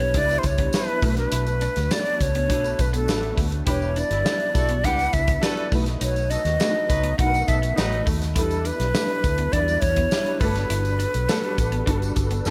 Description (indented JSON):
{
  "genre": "polished 1980s jazz-funk pop",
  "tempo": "102 BPM",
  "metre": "4/4",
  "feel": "straight",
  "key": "B minor",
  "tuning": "A4 = 440 Hz",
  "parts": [
    { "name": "breathy mellow silver concert flute", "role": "melody", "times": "0.0-12.5 s", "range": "A4 to F#5", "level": "-27 LUFS", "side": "equal", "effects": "none" },
    { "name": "warm grand piano", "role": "accompaniment", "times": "0.0-12.5 s", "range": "F#3 to B4", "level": "-32 LUFS", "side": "equal", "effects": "ensemble chorus" },
    { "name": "clean electric guitar", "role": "riff", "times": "0.0-12.4 s", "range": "A3 to E4", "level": "-36 LUFS", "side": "equal", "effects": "lush chorus" },
    { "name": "vintage muted fingered electric bass", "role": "bass", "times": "0.0-12.5 s", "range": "E1 to G2", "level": "-28 LUFS", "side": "equal", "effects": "none" },
    { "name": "modern studio drum kit", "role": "drums", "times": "0.1-12.5 s", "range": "hi-hat, kick drum, snare drum", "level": "-28 LUFS", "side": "equal", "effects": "gated reverb" },
    { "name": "tambourine", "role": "percussion", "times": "0.3-12.5 s", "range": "none", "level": "-43 LUFS", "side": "equal", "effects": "none" },
    { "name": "mellow horn section", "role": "second line", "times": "3.7-8.0 s", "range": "B2 to B4", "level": "-35 LUFS", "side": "equal", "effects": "none" }
  ],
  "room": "small room reverb",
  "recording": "none",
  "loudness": "-22 LUFS",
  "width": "mono",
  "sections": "0.0-12.5 A section",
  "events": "none",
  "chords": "0.0 Em7; 1.0 Bm7; 3.7 Em7; 5.7 B7; 8.4 Em7; 10.4 Gmaj9"
}